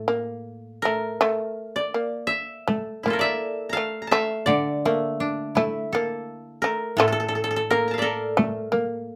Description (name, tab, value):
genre	japanese traditional, Japanese chamber music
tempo	79-87 BPM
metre	4/4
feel	rubato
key	A miyako bushi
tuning	A4 = 440 Hz
part	koto	melody	0.0-9.2 s	E4 to Bb5	-28 LUFS	equal	none
part	shamisen	second line	0.0-9.2 s	A3 to Bb3	-28 LUFS	equal	none
part	koto	accompaniment	0.0-9.1 s	A2 to A4	-32 LUFS	equal	none
part	taiko ensemble	percussion	1.2-8.9 s	none	-29 LUFS	equal	none
room	moderate small room reverb, RT60 0.6 s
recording	none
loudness	-25 LUFS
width	mono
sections	0.0-9.2 A section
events	none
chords	none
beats	0.46 | 1.21 1.95 2.69 3.42 | 4.14 4.86 5.57 6.29 | 7.00 7.69 8.39 9.09